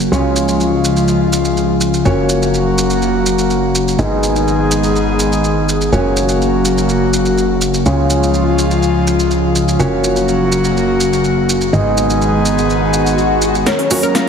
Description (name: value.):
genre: progressive house.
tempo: 124 BPM.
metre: 4/4.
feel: straight.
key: F# major.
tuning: A4 = 440 Hz.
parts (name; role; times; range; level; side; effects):
airy breathy pad; sustained chords; 0.0-14.3 s; C#3 to A#4; -14 LUFS; left 1 dB; chorus.
felt-muted upright piano; stabs; 0.0-14.0 s; G#2 to D#5; -18 LUFS; right 1 dB; ping-pong delay.
plucky analog bass; bass; 0.0-13.6 s; F#1 to C#2; -20 LUFS; equal; none.
maracas; percussion; 0.0-14.3 s; none; -23 LUFS; right 2 dB; none.
sub drop, swell and riser; sound effects; 0.0-0.1, 12.8-14.3 s; none; -19 LUFS; left 2 dB; none.
soft octave-layered synth lead; melody; 13.7-14.3 s; C#5 to E#5; -18 LUFS; left 2 dB; chorus, phaser.
wide unison pluck; arpeggios; 13.7-14.2 s; C#4 to A#4; -18 LUFS; equal; ping-pong delay.
big-room dance drum kit; drums; 13.7-14.2 s; hi-hat, snare drum; -17 LUFS; equal; none.
room: wet lush hall reverb, RT60 1.9 s, digital ambience.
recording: heavily compressed radio sound.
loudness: -12 LUFS.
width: side -6 dB against mid.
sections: 0.0-13.7 A section.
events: filter sweep on analog synth pad 0.0-13.7; swell 12.8-13.7; drum fill 13.7-14.3.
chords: 0.1 C#; 2.1 F#; 4.0 G#m; 5.9 F#; 7.9 C#; 9.8 F#; 11.7 G#m; 13.7 F#.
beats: | 0.12 0.60 1.09 1.57 | 2.05 2.54 3.02 3.50 | 3.99 4.47 4.96 5.44 | 5.92 6.41 6.89 7.38 | 7.86 8.34 8.83 9.31 | 9.79 10.28 10.76 11.25 | 11.73 12.21 12.70 13.18 | 13.67 14.15.